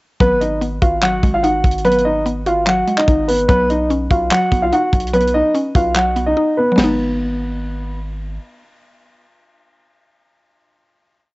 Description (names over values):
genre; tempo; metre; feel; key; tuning
hip hop, trap; 146 BPM; 4/4; half-time; G# dorian; A4 = 436 Hz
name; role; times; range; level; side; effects
dark concert grand piano; melody; 0.2-8.0 s; B3 to F#5; -16 LUFS; equal; cassette tape
mallet-like synth pluck; accompaniment; 0.2-10.3 s; F#3 to F#4; -21 LUFS; left 1 dB; chorus, cassette tape
long sustained 808-style bass; bass; 0.2-8.4 s; G#1 to B1; -24 LUFS; equal; none
tight funk drum kit; drums; 0.2-6.9 s; handclaps, hi-hat, kick drum, ride cymbal, snare drum; -18 LUFS; equal; cassette tape
room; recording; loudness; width
light reverb, small room ambience; home recording on cassette, nothing above 7.9 kHz; -13 LUFS; side -22 dB against mid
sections
0.2-6.8 hook; 6.8-10.1 final chord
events
drums muted 6.4-6.8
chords
0.2 G#m7; 3.5 Badd9; 6.8 G#m7